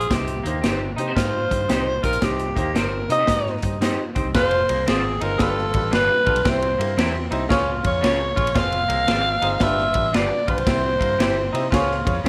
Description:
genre	uptempo 1960s-style soul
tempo	114 BPM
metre	4/4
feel	swing 65% on 8ths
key	F harmonic minor from 4.3 s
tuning	A4 = 440 Hz
part	breathy alto saxophone	melody	0.0-12.2 s	G4 to F5	-24 LUFS	equal	none
part	clear upright piano	accompaniment	0.0-12.3 s	G2 to Eb5	-30 LUFS	equal	none
part	electric guitar through a small old amp	riff	0.0-12.2 s	Bb3 to F4	-32 LUFS	equal	none
part	vintage muted fingered electric bass	bass	0.0-12.3 s	F1 to C3	-30 LUFS	equal	none
part	swinging big-band drum kit	drums	0.0-12.3 s	hi-hat, kick drum, ride cymbal, snare drum	-26 LUFS	equal	none
part	electric guitar through a small old amp	stabs	0.6-12.3 s	G3 to Db5	-30 LUFS	equal	ensemble chorus
room	moderate studio reverb, RT60 0.6 s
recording	none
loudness	-21 LUFS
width	mono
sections	0.0-4.3 A section; 4.3-12.3 B section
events	alto saxophone solo 0.0-4.3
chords	0.1 Cm; 4.3 Fm; 5.4 G7; 6.5 C; 7.5 Db; 8.6 Fm; 9.6 G7; 10.7 C; 11.7 Db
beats	| 0.10 0.64 1.17 1.70 | 2.23 2.76 3.29 3.81 | 4.34 4.87 5.40 5.92 | 6.45 6.98 7.51 8.03 | 8.56 9.09 9.61 10.14 | 10.66 11.19 11.71 12.24

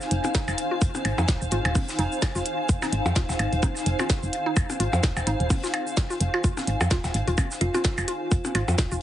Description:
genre	minimal techno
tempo	128 BPM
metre	4/4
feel	swing 57% on 16ths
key	F minor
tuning	A4 = 441 Hz
part	crisp fusion drum kit	drums	0.0-8.9 s	hi-hat, snare drum	-40 LUFS	left 3 dB	none
part	minimal click drum kit	drums	0.0-9.0 s	hi-hat, shaker, snare drum	-30 LUFS	right 1 dB	overdrive
part	granular cloud pad	texture	0.0-9.0 s	Eb4 to Ab5	-30 LUFS	equal	built-in reverb, sidechain pumping
part	woody FM bass	bass	0.1-9.0 s	Eb1 to F2	-26 LUFS	equal	sidechain pumping
part	percussion blips	percussion	0.2-8.8 s	none	-30 LUFS	left 1 dB	digital delay
part	mallet-like synth pluck	riff	0.3-8.9 s	Eb4 to F5	-32 LUFS	equal	chorus, cassette tape, sidechain pumping, dub echo
part	electronic kick drum	drums	0.3-8.9 s	none	-24 LUFS	equal	none
part	kalimba	melody	7.6-7.7 s	F4	-32 LUFS	right 1 dB	digital delay
room	moderate small room reverb, RT60 0.5 s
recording	heavily compressed radio sound, multiband compression, nothing above 10.4 kHz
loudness	-22 LUFS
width	side -12 dB against mid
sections	0.0-9.0 A section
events	none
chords	0.0 Fm7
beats	0.35 | 0.81 1.28 1.75 2.22 | 2.69 3.16 3.63 4.10 | 4.57 5.03 5.50 5.97 | 6.44 6.91 7.38 7.85 | 8.31 8.78

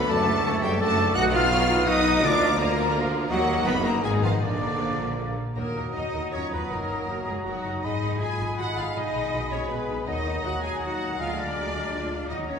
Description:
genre	classical, dramatic, fast romantic movement for symphony orchestra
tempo	153-172 BPM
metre	3/4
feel	rubato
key	Eb minor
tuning	A4 = 441 Hz
part	warm symphonic violin section	melody	0.0-12.6 s	D5 to F#6	-32 LUFS	left 3 dB	none
part	clear clarinet	second line	0.0-12.6 s	D4 to Ab5	-33 LUFS	equal	none
part	mellow hollow small flute group	second line	0.0-12.6 s	D5 to F#6	-32 LUFS	left 2 dB	none
part	warm oboe	second line	0.0-12.6 s	Bb4 to Cb6	-34 LUFS	right 1 dB	none
part	warm symphonic violin section	second line	0.0-12.6 s	Bb3 to Ab5	-34 LUFS	left 1 dB	none
part	warm symphonic viola section	accompaniment	0.0-12.6 s	D3 to Bb4	-35 LUFS	right 1 dB	none
part	clear trombone section	sustained chords	0.0-5.4 s	D3 to Cb4	-34 LUFS	right 3 dB	none
part	mellow French horn section	sustained chords	0.0-12.6 s	D3 to Bb4	-32 LUFS	left 3 dB	none
part	concert harp	arpeggios	0.0-12.6 s	F#2 to Gb5	-33 LUFS	left 5 dB	none
part	mellow tuba	bass	0.0-5.3 s	F#1 to Eb2	-31 LUFS	right 3 dB	none
part	rich symphonic cello section	bass	0.0-12.6 s	D3 to Ab4	-32 LUFS	right 3 dB	none
part	warm symphonic double bass section	bass	0.0-12.6 s	Gb1 to F#2	-33 LUFS	right 1 dB	none
part	warm bassoon	accompaniment	5.6-12.6 s	Gb3 to Ab3	-36 LUFS	right 2 dB	none
room	wet concert hall reverb, RT60 2.0 s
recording	minimal, uncompressed stereo recording, lossy compression artefacts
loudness	-22 LUFS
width	side -6 dB against mid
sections	0.0-5.6 A section; 5.6-12.6 B section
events	none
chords	0.1 D/F#; 1.2 B; 2.2 Bb/D; 3.3 Ebm; 4.0 Abm; 4.4 Bb; 5.6 Ebm; 6.7 Ebm/Gb; 7.8 Abm; 9.0 Abm/Cb; 10.1 Ebm; 11.2 Bb7/D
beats	| 0.10 0.45 0.81 | 1.16 1.52 1.87 | 2.23 2.58 2.94 | 3.30 3.66 4.03 | 4.42 4.80 5.17 | 5.56 5.95 6.33 | 6.71 7.09 7.46 | 7.84 8.21 8.59 | 8.96 9.33 9.70 | 10.07 10.44 10.82 | 11.19 11.55 11.92 | 12.29

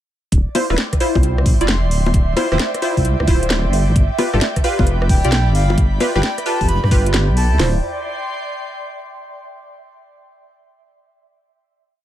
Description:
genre	UK garage, two-step garage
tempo	132 BPM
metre	4/4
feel	swing 66% on 16ths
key	D dorian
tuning	A4 = 439 Hz
part	ethereal airy pad	sustained chords	1.4-7.6 s	E5	-31 LUFS	right 9 dB	ensemble chorus, built-in reverb, sidechain pumping
part	deep soft wobble bass	bass	0.3-7.8 s	D1 to G2	-17 LUFS	equal	chorus, sidechain pumping
part	garage drum kit	drums	0.3-7.7 s	hi-hat, kick drum, snare drum, toms	-16 LUFS	equal	none
part	garage drum kit	drums	0.3-7.5 s	bongos, hi-hat, rim click, snare drum	-22 LUFS	left 2 dB	none
part	airy breathy pad	texture	0.3-9.4 s	D5 to C6	-28 LUFS	left 1 dB	chorus, sidechain pumping
part	punchy chord stab	stabs	0.6-7.8 s	E4 to D5	-21 LUFS	equal	chorus, cassette tape, ping-pong delay
part	breathy flute-like synth lead	melody	4.6-7.6 s	F5 to B5	-25 LUFS	equal	lush chorus
room	little or no reverb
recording	none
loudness	-14 LUFS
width	side -12 dB against mid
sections	0.3-7.6 drop; 7.6-9.4 final chord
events	drop 0.3-7.6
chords	0.3 Dm9; 4.0 G7; 7.6 D7(no3)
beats	| 0.32 0.78 1.23 1.69 | 2.14 2.60 3.05 3.50 | 3.96 4.41 4.87 5.32 | 5.78 6.23 6.69 7.14 | 7.59 8.05 8.50 8.96

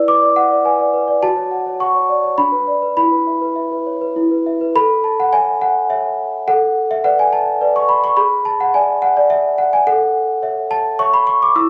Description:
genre	classical, lullaby for celesta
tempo	105 BPM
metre	3/4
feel	straight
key	A major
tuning	A4 = 440 Hz
part	celesta	solo	0.0-11.7 s	D4 to E6	-16 LUFS	equal	none
room	light reverb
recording	recorded on a phone in the room, club reverb, compression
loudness	-16 LUFS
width	mono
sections	0.0-4.8 A section; 4.8-11.7 B section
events	none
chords	0.0 E7; 1.2 F#m; 2.4 Bm/D; 3.0 E5; 4.8 A; 6.5 Bm7/A; 8.2 E7/G#; 9.9 A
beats	0.09 0.66 | 1.23 1.81 2.38 | 2.98 3.57 4.17 | 4.75 5.32 5.90 | 6.47 7.04 7.61 | 8.18 8.74 9.31 | 9.87 10.43 10.99 | 11.55

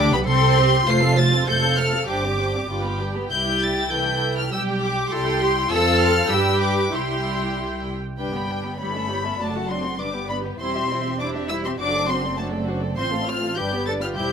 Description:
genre	quick classical-period movement for string orchestra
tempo	100 BPM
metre	2/4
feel	rubato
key	C major, G major from 8.2 s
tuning	A4 = 440 Hz
part	warm chamber violin section	melody	0.0-14.3 s	G5 to C7	-24 LUFS	left 3 dB	none
part	warm chamber violin section	second line	0.0-14.3 s	B3 to B5	-28 LUFS	equal	none
part	dark chamber viola section	accompaniment	0.0-14.3 s	E3 to A4	-27 LUFS	equal	none
part	dark chamber double bass section	bass	0.0-14.3 s	E1 to G2	-26 LUFS	right 2 dB	none
part	warm chamber cello section	bass	0.0-14.3 s	G3 to A4	-27 LUFS	right 2 dB	none
room	moderate large studio reverb, RT60 0.8 s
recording	minimal, uncompressed stereo recording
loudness	-19 LUFS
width	side -7 dB against mid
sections	0.0-8.2 A section; 8.2-14.3 B section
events	none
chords	0.3 C5; 0.9 F; 2.1 Gsus4; 2.7 G; 3.3 C; 4.5 G/B; 5.1 C; 5.7 Fmaj7; 6.3 G; 6.9 C; 8.2 G; 8.8 A7/G; 9.4 D/F#; 10.0 G; 10.6 C/E; 11.8 D7/F#; 13.0 F/A; 13.6 G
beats	0.27 | 0.86 1.47 | 2.09 2.70 | 3.32 3.93 | 4.52 5.12 | 5.71 6.31 | 6.93 7.56 | 8.19 8.80 | 9.40 10.00 | 10.60 11.20 | 11.79 12.38 | 12.97 13.56 | 14.16

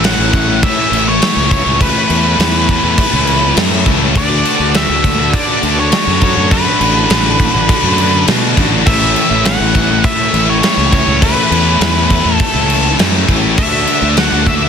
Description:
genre	quiet-loud alternative rock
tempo	102 BPM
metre	4/4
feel	straight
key	A major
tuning	A4 = 440 Hz
part	octave-fuzz lead guitar	melody	0.0-14.7 s	B4 to F#5	-17 LUFS	equal	distortion, digital delay
part	rich studio string section	sustained chords	0.0-14.7 s	A4 to D6	-28 LUFS	left 1 dB	none
part	heavy high-gain guitar	riff	0.0-14.7 s	A2 to D4	-19 LUFS	left 1 dB	distortion
part	thick fuzz guitar	riff	0.0-14.7 s	A2 to F#4	-20 LUFS	left 11 dB	distortion
part	thick fuzz guitar	riff	0.0-14.7 s	A2 to F#4	-21 LUFS	right 15 dB	distortion
part	fuzz fingered electric bass	bass	0.0-14.7 s	A1 to D3	-17 LUFS	equal	overdrive
part	big rock drum kit	drums	0.0-14.6 s	crash cymbal, kick drum, snare drum	-14 LUFS	equal	soft clipping on kick
room	light reverb, studio ambience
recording	dense, heavily limited modern master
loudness	-10 LUFS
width	side -7 dB against mid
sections	0.0-14.7 A section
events	none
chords	0.0 Aadd9; 4.2 D6; 8.9 Aadd9; 13.6 D6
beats	0.04 0.63 1.22 | 1.81 2.39 2.98 3.57 | 4.16 4.75 5.33 5.92 | 6.51 7.10 7.69 8.28 | 8.86 9.45 10.04 10.63 | 11.22 11.81 12.40 12.99 | 13.58 14.17

